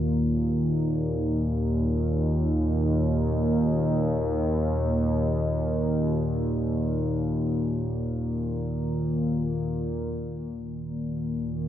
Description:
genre	ambient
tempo	free time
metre	none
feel	none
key	unclear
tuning	A4 = 441 Hz
part	analog drone	solo	0.0-11.7 s	Eb2 to Bb2	-24 LUFS	equal	chorus, tape echo
room	moderate spring reverb, RT60 2.5 s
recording	echo-heavy mix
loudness	-24 LUFS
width	side -11 dB against mid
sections	0.0-10.1 A section; 10.1-11.7 B section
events	none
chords	0.0 Eb5

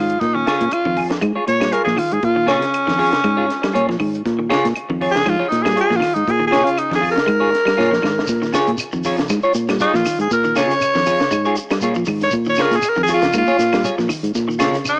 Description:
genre	afrobeat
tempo	119 BPM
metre	4/4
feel	swing 54% on 16ths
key	Bb dorian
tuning	A4 = 439 Hz
part	raspy tenor saxophone	melody	0.0-15.0 s	Db4 to Db5	-20 LUFS	equal	none
part	clean electric guitar	arpeggios	0.0-14.8 s	Db3 to Bb3	-29 LUFS	equal	cassette tape
part	fingered electric bass	bass	0.0-15.0 s	F2 to Db3	-24 LUFS	equal	none
part	compact cocktail drum kit	drums	0.1-15.0 s	hi-hat, kick drum, snare drum	-28 LUFS	equal	cassette tape
part	semi-hollow electric guitar	stabs	0.4-14.8 s	F4 to Db5	-24 LUFS	equal	analog chorus, cassette tape
part	claves	percussion	0.5-15.0 s	none	-31 LUFS	equal	none
part	shekere	percussion	8.3-15.0 s	none	-33 LUFS	equal	none
room	light reverb, studio reverb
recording	home recording on cassette, small speaker sound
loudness	-18 LUFS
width	mono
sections	0.0-15.0 A section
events	tenor saxophone solo 0.0-15.0; drum fill 7.8-8.3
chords	0.0 Bbm7

